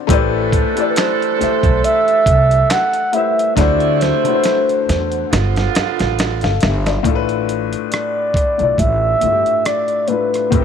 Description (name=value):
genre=R&B, neo-soul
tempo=69 BPM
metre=4/4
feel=swing 55% on 16ths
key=A dorian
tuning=A4 = 441 Hz
part: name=warm upright piano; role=accompaniment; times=0.0-10.6 s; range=A2 to F5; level=-20 LUFS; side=left 14 dB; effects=none
part: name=edgy saxophone section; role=stabs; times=0.1-6.6 s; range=C3 to A4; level=-22 LUFS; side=right 14 dB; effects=none
part: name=upright bass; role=bass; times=0.1-10.6 s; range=G1 to E2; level=-19 LUFS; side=right 1 dB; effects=none
part: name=dusty soul sampler-style drum kit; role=drums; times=0.1-10.6 s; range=handclaps, hi-hat, kick drum, rim click, snare drum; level=-19 LUFS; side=right 1 dB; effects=none
part: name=breathy flugelhorn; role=melody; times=0.9-10.6 s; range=B4 to F#5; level=-16 LUFS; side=right 2 dB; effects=none
room=moderate plate reverb, RT60 2.5 s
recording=1960s-style stereo with parts hard left and right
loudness=-13 LUFS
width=side -7 dB against mid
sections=0.0-7.0 A section; 7.0-10.6 B section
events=drum fill 3.6-7.0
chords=0.1 Am11; 3.6 D9; 5.3 G9; 7.0 G9/A